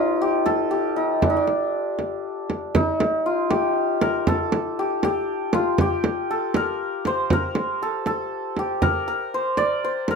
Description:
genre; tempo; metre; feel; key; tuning
Persian modal ensemble; 79 BPM (dotted quarters); 6/8; straight; unclear; A4 = 440 Hz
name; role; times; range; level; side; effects
santur; melody; 0.0-10.2 s; D4 to D5; -22 LUFS; left 1 dB; none
frame drum; percussion; 0.5-10.2 s; none; -23 LUFS; right 2 dB; none
room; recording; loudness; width
moderate studio ambience, RT60 0.5 s; close, detailed microphones; -20 LUFS; side -5 dB against mid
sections
0.0-2.8 A section; 2.8-10.2 B section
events
none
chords
none

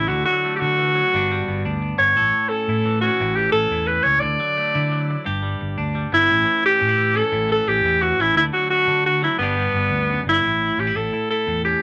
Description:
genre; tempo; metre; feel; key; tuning
highlife guitar band; 116 BPM (dotted quarters); 12/8; straight; A mixolydian; A4 = 440 Hz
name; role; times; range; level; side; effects
bright alto saxophone; melody; 0.0-11.8 s; B3 to D5; -20 LUFS; equal; none
clean electric guitar; accompaniment; 0.0-11.8 s; F#2 to A4; -30 LUFS; equal; none
fingered electric bass; bass; 0.0-11.7 s; G1 to D3; -28 LUFS; equal; none
room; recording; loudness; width
moderate club reverb, RT60 0.5 s; none; -20 LUFS; mono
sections
0.0-10.4 A section; 10.4-11.8 B section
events
none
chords
0.1 Dadd9; 1.1 G; 2.2 A; 4.2 Dadd9; 5.3 G; 6.3 A; 8.4 Dadd9; 9.4 G; 10.4 A

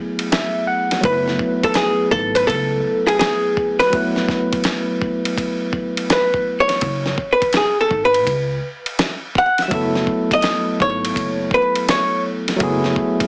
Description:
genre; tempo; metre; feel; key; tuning
hip hop, jazz-hop; 83 BPM; 4/4; swing 66% on 16ths; F# minor; A4 = 440 Hz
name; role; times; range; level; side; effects
barky tine electric piano; accompaniment; 0.0-13.3 s; F#3 to F#5; -21 LUFS; equal; medium stereo tremolo
dusty soul sampler-style drum kit; drums; 0.2-13.3 s; hi-hat, kick drum, ride cymbal, snare drum; -23 LUFS; equal; none
upright bass; bass; 1.0-12.9 s; F#1 to C#2; -26 LUFS; equal; none
archtop guitar, miked and amplified; melody; 1.1-12.2 s; G#4 to F#5; -17 LUFS; equal; slapback echo
room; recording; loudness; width
wet small room reverb, RT60 0.5 s; heavily compressed radio sound, small speaker sound; -16 LUFS; side -35 dB against mid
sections
0.0-13.3 A section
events
tine electric piano fill 0.0-1.0; hollow-body jazz guitar solo 0.0-13.3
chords
0.0 F#m11

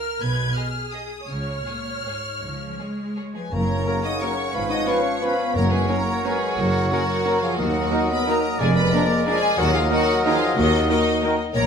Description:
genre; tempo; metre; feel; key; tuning
classical, orchestral ballroom waltz; 152-198 BPM; 3/4; rubato; F# major; A4 = 440 Hz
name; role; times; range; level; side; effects
rich studio violin section; melody; 0.0-11.7 s; D#5 to G#6; -29 LUFS; left 3 dB; none
rich studio viola section; accompaniment; 0.0-11.3 s; A#3 to C#5; -31 LUFS; right 2 dB; none
rich studio cello section; bass; 0.2-11.7 s; D#2 to G#3; -28 LUFS; equal; none
rich studio double bass section; bass; 0.2-11.7 s; E#1 to D#2; -28 LUFS; right 2 dB; none
rich studio violin section; second line; 0.6-11.7 s; D#4 to D#5; -29 LUFS; equal; none
mellow French horn section; sustained chords; 3.3-11.7 s; D#3 to D#4; -28 LUFS; left 5 dB; none
concert flute; second line; 3.4-11.7 s; F#4 to F#5; -30 LUFS; left 2 dB; none
clear oboe; second line; 3.5-11.5 s; C#5 to D#5; -29 LUFS; equal; none
warm clarinet; second line; 3.5-11.5 s; A#4 to B4; -32 LUFS; left 1 dB; none
clear bassoon; accompaniment; 3.5-11.5 s; C#3 to G#3; -28 LUFS; right 2 dB; none
timpani; percussion; 3.5-6.0 s; F#2; -28 LUFS; right 1 dB; none
brilliant trombone section; sustained chords; 3.9-11.4 s; D#3 to D#4; -30 LUFS; right 2 dB; none
mellow trumpet section; stabs; 3.9-11.3 s; A#4 to B4; -29 LUFS; left 1 dB; none
room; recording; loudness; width
wet stone room reverb, RT60 0.9 s; none; -19 LUFS; side -6 dB against mid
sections
0.0-3.5 A section; 3.5-11.7 B section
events
none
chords
0.2 G#m/B; 1.3 C#; 3.5 F#; 4.5 C#7/G#; 5.6 F#; 7.6 D#m; 8.6 A#7/E#; 9.6 D#m

